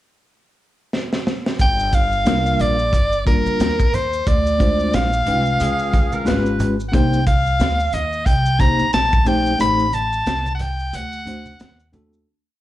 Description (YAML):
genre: hip hop, jazz-hop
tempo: 90 BPM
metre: 4/4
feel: swing 58% on 16ths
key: G minor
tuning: A4 = 440 Hz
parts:
  - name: crunchy breakbeat drum kit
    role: drums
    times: 0.9-12.1 s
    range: hi-hat, kick drum, snare drum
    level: -20 LUFS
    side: equal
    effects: none
  - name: breathy soprano saxophone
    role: melody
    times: 1.6-11.9 s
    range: Bb4 to B5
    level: -20 LUFS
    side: left 1 dB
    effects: slapback echo
  - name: upright bass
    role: bass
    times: 1.6-12.2 s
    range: G1 to Eb2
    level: -22 LUFS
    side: equal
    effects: none
  - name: maracas and congas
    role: percussion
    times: 1.6-12.3 s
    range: none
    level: -30 LUFS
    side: right 2 dB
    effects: none
  - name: tine electric piano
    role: accompaniment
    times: 2.2-12.3 s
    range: G3 to G5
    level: -22 LUFS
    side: left 2 dB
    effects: medium tremolo, slapback echo
  - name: breathy tenor saxophone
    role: second line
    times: 5.6-6.7 s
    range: G#4 to B4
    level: -29 LUFS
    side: right 2 dB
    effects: slapback echo
room: light reverb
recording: live gig heard through the venue's PA, club reverb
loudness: -16 LUFS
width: side -14 dB against mid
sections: 0.0-1.6 pickup bar; 1.6-12.3 head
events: drum fill 0.9-1.6; break 9.6-12.3; fade-out 9.6-12.3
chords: 0.0 N.C.; 1.6 Gm7; 4.3 Dm7b5; 5.6 C#7#11; 6.9 Cm7; 9.6 Am7b5; 10.9 D7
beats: 0.27 0.93 | 1.60 2.27 2.93 3.60 | 4.26 4.93 5.60 6.26 | 6.93 7.60 8.27 8.93 | 9.60 10.27 10.93 11.60